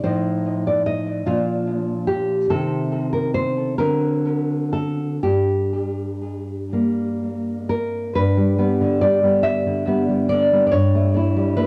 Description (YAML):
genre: romantic piece for solo classical guitar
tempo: 40-51 BPM (dotted quarters)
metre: 6/8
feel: rubato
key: G minor, G major from 8.2 s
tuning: A4 = 440 Hz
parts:
  - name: nylon-string guitar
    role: solo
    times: 0.0-11.7 s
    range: G2 to E5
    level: -20 LUFS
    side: equal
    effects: cassette tape, tape echo
room: wet small room reverb, RT60 0.5 s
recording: home recording on cassette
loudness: -21 LUFS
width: mono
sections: 0.0-8.2 A section; 8.2-11.7 B section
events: none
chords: 0.1 F7/A; 1.3 Bb; 2.5 Adim/C; 3.8 D7; 5.2 Gm; 8.2 G; 10.7 A7/G